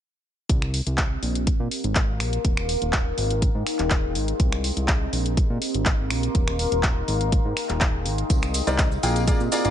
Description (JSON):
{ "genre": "piano house", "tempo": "123 BPM", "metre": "4/4", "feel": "straight", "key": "Eb major", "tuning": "A4 = 445 Hz", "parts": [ { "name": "fat analog bass", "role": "bass", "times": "0.5-9.7 s", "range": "Eb1 to Bb2", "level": "-26 LUFS", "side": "equal", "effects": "sidechain pumping" }, { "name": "electronic kick drum", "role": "drums", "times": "0.5-9.4 s", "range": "none", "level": "-22 LUFS", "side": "equal", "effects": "none" }, { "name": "house drum kit", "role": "drums", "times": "0.5-9.7 s", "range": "cabasa, finger snaps, handclaps, hi-hat", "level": "-28 LUFS", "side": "equal", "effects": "none" }, { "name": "deep dark ambient pad", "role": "texture", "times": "1.1-9.7 s", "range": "Eb4 to F5", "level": "-28 LUFS", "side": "left 1 dB", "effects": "chorus, built-in reverb, sidechain pumping" }, { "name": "tambourine", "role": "percussion", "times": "8.3-9.7 s", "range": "none", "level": "-36 LUFS", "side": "left 7 dB", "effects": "none" }, { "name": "bright upright piano", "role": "riff", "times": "8.7-9.7 s", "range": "C3 to G5", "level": "-24 LUFS", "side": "left 1 dB", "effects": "sidechain pumping" } ], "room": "digital ambience", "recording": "nothing above 10.3 kHz", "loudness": "-21 LUFS", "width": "side -10 dB against mid", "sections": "0.5-9.7 A section", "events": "none", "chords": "0.5 Cm; 1.2 Bb7; 2.4 Eb6; 4.4 Cm7; 5.1 Bb7; 6.3 Eb6; 8.3 Cm9; 9.0 Bb7" }